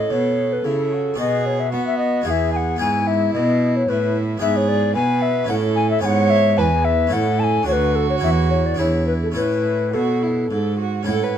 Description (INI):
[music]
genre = classical, baroque-style sonata movement with continuo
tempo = 110 BPM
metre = 3/4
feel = rubato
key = E major, A major from 4.4 s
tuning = A4 = 437 Hz
[part]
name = mellow hollow tenor recorder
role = melody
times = 0.0-11.4 s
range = A4 to A5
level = -21 LUFS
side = left 4 dB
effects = none
[part]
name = dark violin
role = second line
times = 0.0-11.4 s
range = E4 to C#5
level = -24 LUFS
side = right 6 dB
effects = none
[part]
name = harpsichord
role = accompaniment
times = 0.0-11.4 s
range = D2 to B4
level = -25 LUFS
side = left 1 dB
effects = none
[part]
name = warm cello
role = bass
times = 0.0-11.4 s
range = D2 to B3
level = -22 LUFS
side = right 2 dB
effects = none
[sound]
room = light reverb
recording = dark, warm production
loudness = -17 LUFS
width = side -9 dB against mid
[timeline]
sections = 0.0-11.1 A section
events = none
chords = 0.0 F#m/A; 1.2 B5; 2.3 E; 2.8 E/G#; 5.5 A; 6.0 E/G#; 7.1 A; 7.7 D; 8.2 A/E; 8.8 E7; 9.4 A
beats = 0.11 0.65 | 1.19 1.72 2.26 | 2.81 3.35 3.89 | 4.42 4.96 5.50 | 6.04 6.58 7.13 | 7.68 8.23 8.79 | 9.36 9.94 10.51 | 11.07